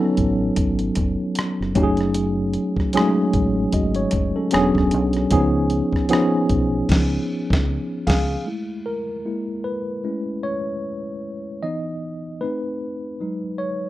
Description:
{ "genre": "R&B, neo-soul", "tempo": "76 BPM", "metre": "4/4", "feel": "swing 56% on 16ths", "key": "F# dorian", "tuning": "A4 = 441 Hz", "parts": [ { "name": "tine electric piano", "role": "accompaniment", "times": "0.0-13.9 s", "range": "E3 to E#5", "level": "-21 LUFS", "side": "equal", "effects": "overdrive, fast stereo tremolo" }, { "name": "deep dub fingered electric bass", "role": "bass", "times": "0.2-8.4 s", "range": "E1 to C#2", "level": "-25 LUFS", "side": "equal", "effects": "none" }, { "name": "dusty soul sampler-style drum kit", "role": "drums", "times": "0.2-8.3 s", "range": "crash cymbal, hi-hat, kick drum, rim click, snare drum", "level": "-23 LUFS", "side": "equal", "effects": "none" } ], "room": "little or no reverb", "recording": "rough home demo mix", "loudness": "-19 LUFS", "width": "side -15 dB against mid", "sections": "0.0-8.5 A section; 8.5-13.9 B section", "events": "band accent 6.9-8.5; tine electric piano solo 8.5-13.9", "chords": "0.0 B9; 1.8 F#m69; 4.5 E13; 5.3 C#9; 8.5 Eadd11/G#; 9.3 G#madd9; 10.0 Amaj9/G#; 11.6 Badd11/E; 12.4 B7b9; 13.2 B69/F#", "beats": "0.57 1.36 | 2.15 2.94 3.73 4.52 | 5.31 6.10 6.89 7.68 | 8.47 9.26 10.04 10.83 | 11.62 12.41 13.20" }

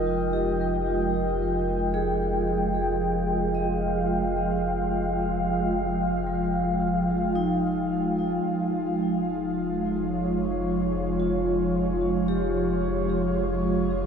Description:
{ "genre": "ambient", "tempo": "55 BPM", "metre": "3/4", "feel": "straight", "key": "F minor", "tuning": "A4 = 443 Hz", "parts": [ { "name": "airy breathy pad", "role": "sustained chords", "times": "0.0-14.1 s", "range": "F3 to G5", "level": "-25 LUFS", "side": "equal", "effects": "chorus" }, { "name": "vibraphone with medium hard mallets", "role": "arpeggios", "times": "0.0-14.1 s", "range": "F3 to Eb5", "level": "-29 LUFS", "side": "right 1 dB", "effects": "ping-pong delay" }, { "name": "warm sub bass", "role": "bass", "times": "0.0-14.1 s", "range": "F1", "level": "-33 LUFS", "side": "equal", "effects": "none" } ], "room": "wet cathedral reverb, RT60 5.2 s", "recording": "dark, warm production", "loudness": "-23 LUFS", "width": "side -7 dB against mid", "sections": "0.0-14.1 A section", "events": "none", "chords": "0.0 Fm7; 8.5 Db/F", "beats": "0.86 | 1.93 3.00 4.08 | 5.18 6.26 7.35 | 8.45 9.55 10.64 | 11.73 12.81 13.89" }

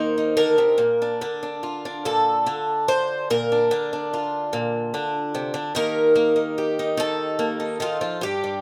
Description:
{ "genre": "folk, solo fingerstyle acoustic guitar", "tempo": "49 BPM (dotted quarters)", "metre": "6/8", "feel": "rubato", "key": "unclear", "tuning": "A4 = 441 Hz", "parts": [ { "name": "picked twelve-string acoustic guitar", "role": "solo", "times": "0.0-8.6 s", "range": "G2 to C5", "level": "-23 LUFS", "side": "equal", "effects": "none" } ], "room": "light reverb", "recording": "none", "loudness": "-23 LUFS", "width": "mono", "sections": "0.0-8.6 A section", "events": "none", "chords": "0.0 Eb5; 0.8 Bbmaj7; 5.7 Eb", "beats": "| 0.79 2.04 | 3.29 4.52 | 5.75 6.97 | 8.21" }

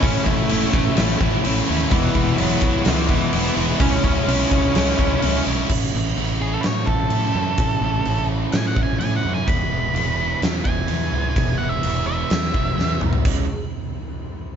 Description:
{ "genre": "quiet-loud alternative rock", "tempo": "127 BPM", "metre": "4/4", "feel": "straight", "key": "unclear", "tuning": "A4 = 440 Hz", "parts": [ { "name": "octave-fuzz lead guitar", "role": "melody", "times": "0.0-13.0 s", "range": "E3 to B5", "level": "-26 LUFS", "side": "equal", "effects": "distortion, digital delay" }, { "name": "overdriven electric guitar", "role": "riff", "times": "0.0-13.5 s", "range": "A2 to E4", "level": "-26 LUFS", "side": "right 8 dB", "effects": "none" }, { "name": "overdriven electric guitar", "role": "riff", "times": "0.0-5.7 s", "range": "A2 to E4", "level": "-25 LUFS", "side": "right 1 dB", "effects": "none" }, { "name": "sludgy distorted guitar", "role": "riff", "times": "0.0-5.7 s", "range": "A2 to E4", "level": "-25 LUFS", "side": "left 9 dB", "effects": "overdrive" }, { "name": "fuzz fingered electric bass", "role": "bass", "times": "0.0-13.5 s", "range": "E1 to A2", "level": "-24 LUFS", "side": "equal", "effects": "overdrive" }, { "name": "huge arena drum kit", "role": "drums", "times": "0.0-13.4 s", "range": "crash cymbal, kick drum, snare drum, toms", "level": "-22 LUFS", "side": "left 1 dB", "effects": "none" } ], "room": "moderate large studio reverb, RT60 0.9 s", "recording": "band playing live in one room, nothing above 7.7 kHz", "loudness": "-18 LUFS", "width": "side -8 dB against mid", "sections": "0.0-5.7 A section; 5.7-13.3 B section; 13.3-14.6 C section", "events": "lead electric guitar solo 5.7-13.3; drum fill 12.8-13.3", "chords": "0.0 A; 1.9 E; 3.8 C#m; 5.7 A; 9.5 E; 13.3 C#m", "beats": "| 0.04 0.51 0.98 1.45 | 1.92 2.40 2.87 3.34 | 3.81 4.28 4.75 5.22 | 5.70 6.17 6.64 7.12 | 7.59 8.06 8.53 9.01 | 9.48 9.95 10.42 10.90 | 11.37 11.84 12.31 12.78 | 13.25" }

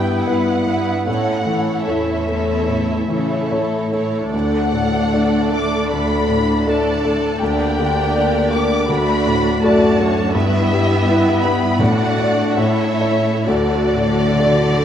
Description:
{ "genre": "classical", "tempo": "63-85 BPM", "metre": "4/4", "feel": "rubato", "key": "D major", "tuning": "A4 = 440 Hz", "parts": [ { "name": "clear concert grand piano", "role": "melody", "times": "0.0-14.8 s", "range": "D2 to D5", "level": "-18 LUFS", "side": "left 2 dB", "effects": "none" }, { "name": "warm studio violin section", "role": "melody", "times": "0.0-14.8 s", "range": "D5 to D6", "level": "-24 LUFS", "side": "left 2 dB", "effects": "none" }, { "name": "rich studio violin section", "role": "second line", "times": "0.0-14.8 s", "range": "E4 to D5", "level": "-25 LUFS", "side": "equal", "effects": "none" }, { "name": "rich studio viola section", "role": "accompaniment", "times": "0.0-14.8 s", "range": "A3 to F#4", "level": "-24 LUFS", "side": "right 4 dB", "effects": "none" }, { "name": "mellow French horn section", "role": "sustained chords", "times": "0.0-14.8 s", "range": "A3 to F#4", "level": "-24 LUFS", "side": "left 1 dB", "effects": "none" }, { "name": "rich studio cello section", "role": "bass", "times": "0.0-14.8 s", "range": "D2 to D3", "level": "-24 LUFS", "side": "right 2 dB", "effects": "none" }, { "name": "timpani", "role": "percussion", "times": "8.9-14.8 s", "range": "A2 to D3", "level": "-28 LUFS", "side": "equal", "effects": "none" } ], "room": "moderate scoring stage reverb, RT60 1.8 s", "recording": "none", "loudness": "-15 LUFS", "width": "side -9 dB against mid", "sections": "0.0-14.8 A section", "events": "timpani fill 13.5-14.8", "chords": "0.0 Em/G; 1.1 A; 4.3 D; 7.4 Gm/D; 8.9 D; 10.3 Em/G; 11.8 D/A; 12.6 A; 13.5 D", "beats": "0.27 | 1.07 1.88 2.69 3.52 | 4.33 5.13 5.90 6.66 | 7.41 8.15 8.89 9.62 | 10.34 11.06 11.80 12.57 | 13.46 14.38" }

